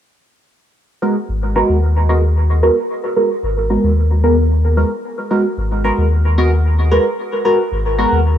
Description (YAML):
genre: dub techno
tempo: 112 BPM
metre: 4/4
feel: straight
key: G# minor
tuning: A4 = 440 Hz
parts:
  - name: deep mellow chord stab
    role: stabs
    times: 1.0-8.2 s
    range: G#3 to A#4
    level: -16 LUFS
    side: right 1 dB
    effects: chorus, phaser, dub echo
  - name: warm sub bass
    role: bass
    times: 1.3-8.4 s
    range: G#1 to D#2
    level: -14 LUFS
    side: equal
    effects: none
room: light reverb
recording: none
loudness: -13 LUFS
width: side -10 dB against mid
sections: 0.8-8.4 A section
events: none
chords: 0.8 G#m9